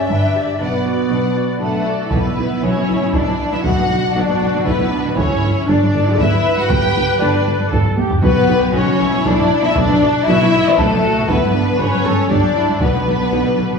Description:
cinematic, epic orchestral film score; 118 BPM; 3/4; straight; B minor; A4 = 440 Hz
rich studio violin section; melody; 0.0-13.8 s; A4 to G5; -22 LUFS; left 4 dB
rich symphonic violin section; second line; 0.0-13.8 s; A3 to E5; -21 LUFS; left 2 dB
rich studio viola section; accompaniment; 0.0-13.8 s; D4 to D5; -23 LUFS; right 3 dB
mellow French horn section; sustained chords; 0.0-13.8 s; A3 to G4; -22 LUFS; left 1 dB
rich symphonic cello section; bass; 0.1-13.8 s; G2 to B2; -22 LUFS; right 1 dB
warm symphonic double bass section; bass; 0.1-13.6 s; G1 to B1; -24 LUFS; equal
mellow tuba; bass; 2.1-13.6 s; G1 to B1; -22 LUFS; equal
taiko ensemble; drums; 2.1-13.3 s; -22 LUFS; equal
wet recital hall reverb, RT60 1.3 s; heard from further back in the room; -13 LUFS; side -5 dB against mid
0.0-2.1 A section; 2.1-13.8 A section
drum fill 7.8-8.2
0.0 G; 0.6 Bm; 5.2 G; 8.2 Bm; 11.3 G; 12.8 Bm

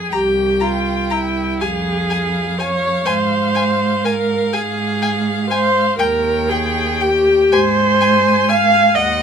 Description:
classical, slow romantic movement for string quartet; 41 BPM (dotted quarters); 6/8; uneven beats, rubato; A4 = 440 Hz
rich violin; melody; 0.0-9.2 s; F5 to Ab5; -24 LUFS; left 8 dB
warm viola; accompaniment; 0.0-9.2 s; E4 to F5; -16 LUFS; equal
clear violin; second line; 0.1-9.2 s; Gb5 to Bb5; -23 LUFS; left 6 dB
warm cello; bass; 0.1-9.2 s; C2 to Ab2; -21 LUFS; right 4 dB
moderate studio reverb, RT60 0.7 s; minimal, uncompressed stereo recording; -14 LUFS; side -7 dB against mid
0.0-9.2 A section
0.1 C5; 1.6 Fm; 3.1 Ab; 6.0 Eb; 7.5 Ab

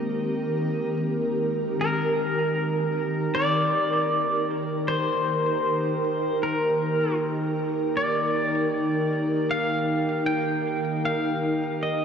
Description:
ambient; 78 BPM; 4/4; straight; Eb major; A4 = 441 Hz
pedal steel guitar; melody; 0.0-12.0 s; Bb4 to G5; -27 LUFS; left 1 dB; ping-pong delay
ethereal airy pad; sustained chords; 0.0-12.0 s; Eb3 to Bb4; -25 LUFS; right 1 dB; ensemble chorus, built-in reverb
analog drone; drone; 0.0-12.0 s; Eb3 to Bb3; -35 LUFS; equal; chorus
glass harmonica; texture; 1.8-12.0 s; G4 to G5; -39 LUFS; equal
wet cathedral reverb, RT60 5.4 s; worn, warbling old tape, cassette tape, warbly pitch drift; -22 LUFS; side -7 dB against mid
0.0-1.8 A section; 1.8-12.0 B section
fade-in on synth drone 1.8-12.0; fade-in on glass harmonica 1.8-12.0
0.0 Abmaj9/Eb; 1.8 Ebmaj7

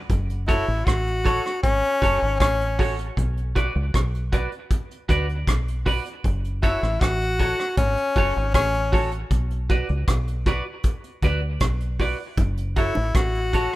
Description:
roots reggae; 78 BPM; 4/4; straight; F# minor; A4 = 439 Hz
deep dub fingered electric bass; bass; 0.1-13.7 s; F#1 to D2; -25 LUFS; equal
soft brush drum kit; drums; 0.1-13.8 s; hi-hat, kick drum, rim click; -23 LUFS; equal
bright tenor saxophone; second line; 0.5-13.8 s; C#4 to F#4; -24 LUFS; left 2 dB; tape echo
clean electric guitar; accompaniment; 0.5-13.7 s; F#4 to D5; -28 LUFS; right 2 dB; lush chorus, tape echo
bongos; percussion; 12.4-13.1 s; -34 LUFS; right 1 dB
small room ambience; rough home demo mix; -20 LUFS; side -17 dB against mid
0.1-13.8 A section
0.1 F#m; 3.2 Bm; 6.2 F#m; 9.3 Bm; 12.4 F#m

